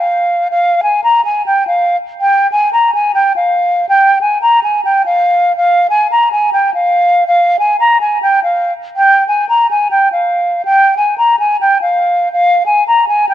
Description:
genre	hip hop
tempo	142 BPM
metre	4/4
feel	half-time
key	unclear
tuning	A4 = 440 Hz
part	mellow hollow silver concert flute	solo	0.0-13.3 s	F5 to Bb5	-9 LUFS	equal	low-pass filter
room	light reverb, small room reverb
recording	none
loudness	-9 LUFS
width	side -12 dB against mid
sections	0.0-13.3 A section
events	none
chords	none

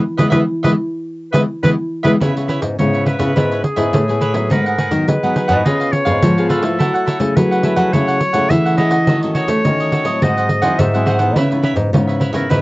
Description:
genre	samba and choro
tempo	105 BPM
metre	4/4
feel	straight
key	unclear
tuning	A4 = 440 Hz
part	nylon-string guitar	bass	0.0-12.6 s	G#2 to A3	-18 LUFS	equal	none
part	bright clarinet	melody	0.2-12.6 s	G#4 to E5	-20 LUFS	equal	cassette tape
part	cavaquinho	accompaniment	0.2-12.6 s	D#4 to F#5	-21 LUFS	right 2 dB	cassette tape
part	nylon-string guitar	accompaniment	0.2-12.6 s	G#2 to G#4	-20 LUFS	left 2 dB	cassette tape
part	pandeiro	percussion	0.2-12.6 s	none	-18 LUFS	right 1 dB	none
room	moderate booth ambience, RT60 0.2 s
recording	home recording on cassette, nothing above 7.8 kHz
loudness	-13 LUFS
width	side -20 dB against mid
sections	0.0-2.2 A section; 2.2-12.6 B section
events	band accent 0.0-2.2; clarinet solo 2.2-12.6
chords	0.0 Emaj7; 2.2 C#m7; 4.5 G#m7; 5.7 C#7; 6.8 F#m9; 9.1 D#m7b5; 10.2 G#7b13; 11.4 C#m9

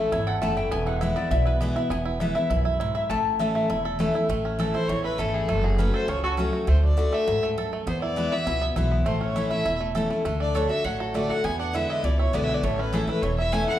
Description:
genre	bluegrass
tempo	201 BPM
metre	4/4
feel	straight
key	A major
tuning	A4 = 440 Hz
part	bluegrass banjo	melody	0.0-13.8 s	E3 to A4	-31 LUFS	right 6 dB	none
part	picked steel-string acoustic guitar	accompaniment	0.0-13.8 s	E2 to F#4	-26 LUFS	left 2 dB	none
part	upright bass	bass	0.0-13.6 s	E1 to E2	-27 LUFS	equal	none
part	lap resonator guitar	second line	0.1-4.0 s	B4 to A5	-29 LUFS	left 4 dB	none
part	rich fiddle	melody	4.7-13.8 s	F#4 to G#5	-29 LUFS	left 1 dB	none
room	wet recital hall reverb, RT60 1.5 s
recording	recorded in a church or concert hall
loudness	-22 LUFS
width	side -12 dB against mid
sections	0.0-4.3 A section; 4.3-13.8 A section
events	resonator guitar played with a steel bar solo 0.0-4.3; fiddle solo 4.3-13.8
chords	0.0 A; 0.7 E; 3.1 A; 5.5 F#m; 6.7 D; 7.9 E; 9.1 A; 10.3 D; 11.4 E7; 12.6 A

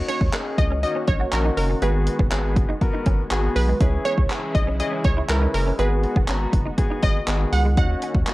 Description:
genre	dance-pop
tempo	121 BPM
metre	4/4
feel	straight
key	G# minor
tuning	A4 = 435 Hz
part	analog pluck	melody	0.0-8.3 s	A#4 to F#5	-26 LUFS	right 1 dB	chorus, tape echo
part	warm concert grand piano	accompaniment	0.0-8.3 s	B3 to A#5	-28 LUFS	left 2 dB	sidechain pumping
part	filtered supersaw swell	sustained chords	0.0-8.3 s	C#3 to F#4	-32 LUFS	equal	sidechain pumping
part	direct-recorded clean electric guitar	riff	0.1-8.3 s	G#3 to F#4	-33 LUFS	right 3 dB	ensemble chorus
part	house drum kit	drums	0.1-8.3 s	handclaps, hi-hat, kick drum	-22 LUFS	equal	none
part	round analog bass	bass	0.2-8.2 s	F#1 to D#2	-23 LUFS	equal	sidechain pumping
room	digital ambience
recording	worn, warbling old tape, cassette tape, warbly pitch drift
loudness	-19 LUFS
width	side -18 dB against mid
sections	0.0-8.3 A section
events	none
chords	0.0 D#m7; 1.8 G#m7; 3.8 C#m; 5.8 G#m7; 7.8 D#m7

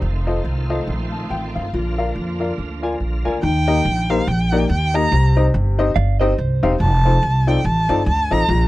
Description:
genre	uptempo gospel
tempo	142 BPM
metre	4/4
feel	swing 58% on 8ths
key	Eb major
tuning	A4 = 437 Hz
part	bright tonewheel organ	sustained chords	0.0-3.4 s	D3 to F4	-31 LUFS	right 4 dB	slow rotary speaker, chorus vibrato
part	rich symphonic string section	sustained chords	0.0-3.4 s	F3 to F4	-34 LUFS	right 1 dB	none
part	upright bass	bass	0.0-8.7 s	Fb1 to F2	-18 LUFS	equal	none
part	warm upright piano	accompaniment	0.3-8.7 s	Bb2 to A5	-21 LUFS	left 3 dB	none
part	warm erhu	melody	3.4-8.7 s	F5 to Bb5	-21 LUFS	right 1 dB	none
part	direct-recorded clean electric guitar	second line	6.0-6.8 s	C5 to F5	-25 LUFS	right 11 dB	none
room	little or no reverb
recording	dry, close 1970s-style studio recording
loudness	-16 LUFS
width	side -17 dB against mid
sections	0.0-3.4 A section; 3.4-8.7 B section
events	none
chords	0.0 F7; 1.7 Bb; 3.4 Eb; 5.1 Cm; 6.8 F7

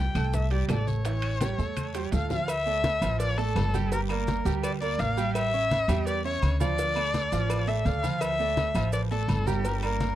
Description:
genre	latin, salsa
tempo	168 BPM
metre	4/4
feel	straight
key	D harmonic minor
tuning	A4 = 436 Hz
part	warm erhu	melody	0.0-10.2 s	A4 to G5	-29 LUFS	left 2 dB	none
part	clear baby grand piano	accompaniment	0.0-10.1 s	E3 to A5	-32 LUFS	right 12 dB	none
part	upright bass	bass	0.0-10.1 s	G1 to E2	-28 LUFS	equal	none
part	bongos and cowbell	percussion	0.2-10.2 s	none	-39 LUFS	left 2 dB	none
part	claves	percussion	0.2-10.0 s	none	-44 LUFS	left 11 dB	none
part	congas	percussion	0.2-10.2 s	none	-33 LUFS	left 1 dB	none
part	guiro	percussion	0.2-10.2 s	none	-46 LUFS	left 16 dB	none
part	maracas	percussion	0.2-10.2 s	none	-46 LUFS	right 14 dB	none
part	timbales and agogo bells	percussion	0.2-10.2 s	none	-40 LUFS	right 3 dB	none
room	little or no reverb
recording	dry, close 1970s-style studio recording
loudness	-24 LUFS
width	side -13 dB against mid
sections	0.0-2.5 A section; 2.5-10.2 B section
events	drum fill 1.4-2.5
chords	0.0 C5; 1.1 A7; 2.5 Dm; 3.9 Gm; 5.4 A7; 6.8 Dm

